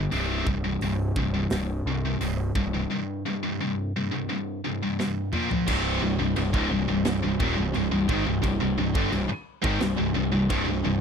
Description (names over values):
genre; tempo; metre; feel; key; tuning
heavy metal; 87 BPM; 4/4; straight; C minor from 5.7 s; A4 = 440 Hz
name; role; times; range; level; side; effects
scooped high-gain guitar; riff; 0.0-11.0 s; C2 to Bb3; -26 LUFS; left 1 dB; distortion
fuzz picked electric bass; bass; 0.0-11.0 s; C1 to C2; -29 LUFS; equal; overdrive
tight metal drum kit; drums; 0.1-10.7 s; china cymbal, crash cymbal, hi-hat, kick drum, snare drum, toms; -31 LUFS; right 1 dB; none
heavy high-gain guitar; riff; 5.7-11.0 s; C2 to Eb3; -28 LUFS; right 1 dB; distortion
room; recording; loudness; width
small room ambience; dry, close 1970s-style studio recording; -24 LUFS; side -6 dB against mid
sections
0.0-5.7 A section; 5.7-11.0 B section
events
drum fill 5.0-5.7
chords
0.1 C5; 5.3 Bb5; 5.7 Cm